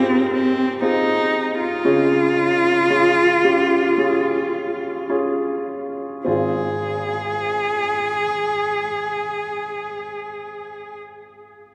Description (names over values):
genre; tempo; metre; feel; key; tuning
pop; 51-60 BPM; 4/4; straight; Ab major; A4 = 440 Hz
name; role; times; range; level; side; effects
clear cello; melody; 0.0-11.0 s; C4 to Ab4; -22 LUFS; equal; none
warm upright piano; accompaniment; 0.0-11.7 s; Ab1 to C5; -24 LUFS; equal; none
room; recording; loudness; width
wet cathedral reverb, RT60 5.5 s; recorded in a church or concert hall; -20 LUFS; mono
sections
0.0-6.3 A section; 6.3-10.9 B section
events
slowing down 0.0-6.3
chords
0.0 Ab6; 1.9 Db; 6.3 Ab6